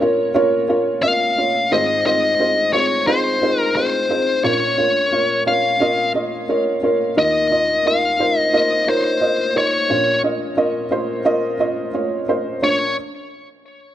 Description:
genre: pop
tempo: 88 BPM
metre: 4/4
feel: swing 56% on 16ths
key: Bb minor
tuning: A4 = 441 Hz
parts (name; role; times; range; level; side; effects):
- felt-muted upright piano; accompaniment; 0.0-12.9 s; Ab1 to Eb5; -18 LUFS; right 1 dB; none
- smooth overdriven lead guitar; melody; 1.0-12.9 s; C5 to F5; -18 LUFS; left 2 dB; none
room: moderate scoring stage reverb, RT60 2.0 s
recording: none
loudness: -16 LUFS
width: side -12 dB against mid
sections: 0.0-12.6 A section; 12.6-13.9 B section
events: none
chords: 0.0 Bbm; 1.7 Ab6; 4.4 Bbm; 7.2 Ebsus2; 9.9 Bbm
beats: 0.35 1.03 | 1.72 2.40 3.08 3.76 | 4.44 5.12 5.81 6.49 | 7.17 7.85 8.53 9.21 | 9.90 10.58 11.26 11.94 | 12.62

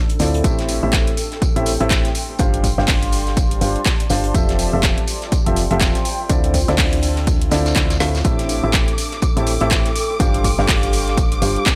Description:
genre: piano house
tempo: 123 BPM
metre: 4/4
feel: swing 59% on 16ths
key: A minor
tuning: A4 = 443 Hz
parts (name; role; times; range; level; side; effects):
- granular cloud pad; texture; 0.0-11.8 s; D4 to C6; -31 LUFS; equal; built-in reverb, sidechain pumping
- garage drum kit; drums; 0.1-11.8 s; handclaps, hi-hat, snare drum; -26 LUFS; equal; overdrive, studio reverb
- loose indie drum kit; drums; 0.1-11.8 s; hi-hat, snare drum, tambourine; -33 LUFS; equal; sidechain pumping on hats, high-pass filter on hats, studio reverb, high-pass filter on snare, sidechain pumping on perc, high-pass filter on perc, high-pass filter on room
- warm baby grand piano; riff; 0.2-11.6 s; A2 to F5; -24 LUFS; equal; sidechain pumping, low-pass filter, tape echo
- solid FM bass; bass; 0.2-11.6 s; F1 to D2; -24 LUFS; equal; sidechain pumping
- electronic kick drum; drums; 0.4-11.8 s; none; -22 LUFS; equal; studio reverb
- warm studio string section; sustained chords; 8.2-11.8 s; D6; -30 LUFS; equal; sidechain pumping
room: studio ambience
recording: dry, gritty hardware recording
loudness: -18 LUFS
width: mono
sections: 0.0-11.8 A section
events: drum fill 8.0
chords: 0.4 Am7; 2.4 G7sus4; 4.3 Fmaj9; 6.1 Dm9; 8.2 Am7; 10.2 G7sus4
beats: | 0.44 0.93 1.42 1.91 | 2.39 2.88 3.37 3.86 | 4.34 4.83 5.32 5.81 | 6.30 6.78 7.27 7.76 | 8.25 8.73 9.22 9.71 | 10.20 10.69 11.17 11.66

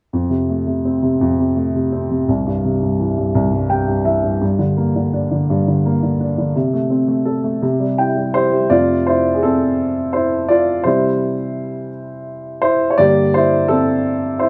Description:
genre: pop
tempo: 56 BPM (dotted quarters)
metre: 6/8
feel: straight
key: F major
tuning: A4 = 439 Hz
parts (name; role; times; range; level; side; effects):
- warm baby grand piano; accompaniment; 0.1-14.5 s; C2 to G5; -17 LUFS; equal; none
room: moderate stone room reverb, RT60 1.0 s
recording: band playing live in one room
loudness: -17 LUFS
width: mono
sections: 0.1-8.7 A section; 8.7-14.5 B section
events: grand piano fill 3.4-4.4, 7.6-8.7; grand piano solo 8.7-14.5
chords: 0.1 F; 2.3 C; 4.4 Gm; 6.6 Am/C; 7.6 C; 8.7 F; 10.8 C; 13.0 Gm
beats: | 0.13 1.21 | 2.28 3.35 | 4.42 5.49 | 6.55 7.63 | 8.71 9.78 | 10.85 11.92 | 12.98 14.05

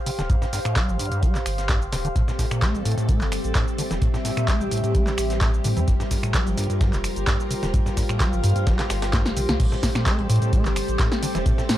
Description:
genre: acid house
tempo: 129 BPM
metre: 4/4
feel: straight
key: A phrygian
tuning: A4 = 440 Hz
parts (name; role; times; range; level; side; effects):
- warbly tape-like pad; texture; 0.0-11.8 s; G4 to F5; -31 LUFS; equal; chorus, built-in reverb, sidechain pumping
- overdriven acid bass; riff; 0.1-11.8 s; G2 to A3; -27 LUFS; equal; digital delay
- breakbeat sampler-style drum kit; drums; 0.1-11.8 s; hi-hat, snare drum; -36 LUFS; equal; sidechain pumping on hats, high-pass filter on hats, high-pass filter on snare, high-pass filter on room
- punchy analog drum machine; drums; 0.1-11.8 s; crash cymbal, finger snaps, handclaps, hi-hat, shaker, snare drum; -28 LUFS; equal; none
- warm sub bass; bass; 0.2-11.4 s; D1 to A2; -27 LUFS; equal; sidechain pumping
- electronic kick drum; drums; 0.3-11.6 s; none; -23 LUFS; equal; none
- string machine, full ensemble; sustained chords; 2.2-11.8 s; G3 to Bb4; -31 LUFS; left 1 dB; ensemble chorus, sidechain pumping
- vibraphone with medium hard mallets; melody; 4.6-5.3 s; G4; -30 LUFS; right 2 dB; ping-pong delay
room: light reverb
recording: dark, warm production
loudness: -20 LUFS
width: side -13 dB against mid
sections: 0.0-9.6 A section; 9.6-11.8 B section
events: drum fill 9.1-9.6; drop 9.6-11.8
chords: 0.0 G5; 2.2 Am7; 5.9 Gm7; 9.6 Am7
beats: | 0.30 0.76 1.23 1.69 | 2.16 2.62 3.09 3.55 | 4.02 4.48 4.95 5.41 | 5.88 6.34 6.81 7.27 | 7.74 8.20 8.67 9.13 | 9.60 10.06 10.53 10.99 | 11.46

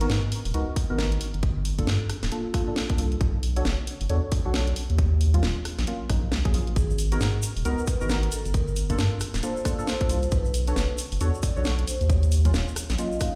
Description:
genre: UK garage, two-step garage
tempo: 135 BPM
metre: 4/4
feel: swing 60% on 16ths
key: unclear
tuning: A4 = 440 Hz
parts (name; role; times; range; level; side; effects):
- deep mellow chord stab; stabs; 0.0-13.3 s; F#3 to C#5; -35 LUFS; equal; chorus, vintage 12-bit sampler grit, dub echo
- saturated sub bass; bass; 0.0-13.0 s; D1 to G#2; -26 LUFS; equal; none
- garage drum kit; drums; 0.0-13.3 s; hi-hat, rim click, snare drum; -34 LUFS; equal; none
- electronic kick drum; drums; 0.8-13.3 s; none; -28 LUFS; equal; none
- vibraphone with soft mallets; melody; 6.8-13.4 s; G#4 to E#5; -37 LUFS; equal; dub echo
- tube shaker; percussion; 6.8-13.3 s; none; -41 LUFS; equal; none
room: little or no reverb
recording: played on a big sound system in a bare room, large studio reverb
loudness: -25 LUFS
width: mono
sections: 0.0-13.4 A section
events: none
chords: 0.0 G#m9; 1.2 Gm9; 3.2 Bm9; 4.8 D#m9; 6.8 G#m9; 8.3 Gm9; 10.3 Bm9; 11.9 D#m9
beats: 0.10 0.54 0.98 | 1.43 1.87 2.32 2.76 | 3.21 3.65 4.10 4.54 | 4.99 5.43 5.87 6.32 | 6.76 7.21 7.65 8.10 | 8.54 8.98 9.43 9.87 | 10.32 10.76 11.21 11.65 | 12.10 12.54 12.98

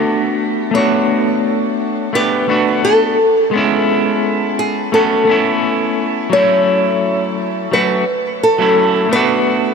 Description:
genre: chillout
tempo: 86 BPM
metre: 4/4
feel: straight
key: unclear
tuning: A4 = 445 Hz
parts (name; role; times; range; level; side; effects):
- nylon-string guitar; melody; 0.0-9.7 s; G#4 to C#5; -16 LUFS; equal; shimmer reverb, tape echo
- clean electric guitar; accompaniment; 0.0-9.7 s; F#3 to G4; -15 LUFS; equal; auto-pan, shimmer reverb, tape echo
room: wet plate reverb, RT60 3.4 s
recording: none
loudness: -12 LUFS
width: side -5 dB against mid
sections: 0.0-9.7 A section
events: none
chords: 0.0 Gmaj9 (rootless); 3.2 Amaj9; 6.3 F#m7; 9.1 Gmaj9 (rootless)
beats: 0.05 | 0.75 1.45 2.15 2.84 | 3.54 4.24 4.94 5.63 | 6.33 7.03 7.73 8.43 | 9.12

